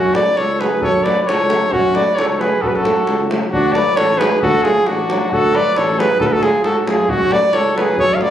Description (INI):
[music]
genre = balkan folk, Balkan brass band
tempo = 134 BPM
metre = 2/4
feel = straight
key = unclear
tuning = A4 = 440 Hz
[part]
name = clear flugelhorn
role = melody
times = 0.0-8.3 s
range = F#4 to E#5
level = -16 LUFS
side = equal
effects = none
[part]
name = mellow trumpet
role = second line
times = 0.0-8.3 s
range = C#4 to C#5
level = -22 LUFS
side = left 1 dB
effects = none
[part]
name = mellow tuba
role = bass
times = 0.0-8.2 s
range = A1 to G#2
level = -22 LUFS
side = equal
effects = none
[part]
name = davul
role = percussion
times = 0.1-8.3 s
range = none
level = -22 LUFS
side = right 1 dB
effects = none
[part]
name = clear euphonium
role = accompaniment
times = 0.2-8.3 s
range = F#3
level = -25 LUFS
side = right 4 dB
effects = none
[part]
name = mellow French horn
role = accompaniment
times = 0.2-8.3 s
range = A3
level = -25 LUFS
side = left 4 dB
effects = none
[sound]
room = moderate small room reverb, RT60 0.6 s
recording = recorded on a phone in the room, studio reverb, compression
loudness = -13 LUFS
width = side -10 dB against mid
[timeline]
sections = 0.0-3.5 A section; 3.5-8.3 A section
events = none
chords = 0.0 F#m; 3.5 D; 7.1 F#m